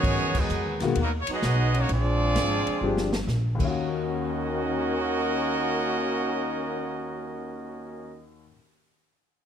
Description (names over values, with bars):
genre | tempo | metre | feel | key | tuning
jazz, big band swing | 129 BPM | 4/4 | swing 68% on 8ths | Eb minor | A4 = 439 Hz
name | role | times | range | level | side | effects
clear trumpet section | melody | 0.0-8.2 s | Gb3 to Eb5 | -29 LUFS | right 1 dB | none
warm trombone section | second line | 0.0-8.2 s | Cb3 to Gb4 | -30 LUFS | right 1 dB | none
bright saxophone section | sustained chords | 0.0-0.5 s | Gb3 to Ab4 | -37 LUFS | left 2 dB | none
upright bass | bass | 0.0-8.4 s | G1 to Ab2 | -28 LUFS | equal | none
swinging big-band drum kit | drums | 0.0-3.7 s | crash cymbal, hi-hat, kick drum, ride cymbal, snare drum | -32 LUFS | equal | none
warm grand piano | accompaniment | 0.8-8.5 s | Eb2 to F5 | -31 LUFS | left 6 dB | none
room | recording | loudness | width
light reverb | close, detailed microphones | -24 LUFS | side -8 dB against mid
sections
0.0-3.8 A section; 3.8-7.5 B section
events
band accent 0.3; drum fill 2.8-3.3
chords
0.0 Abm7; 1.9 Bb13; 3.5 Ebm9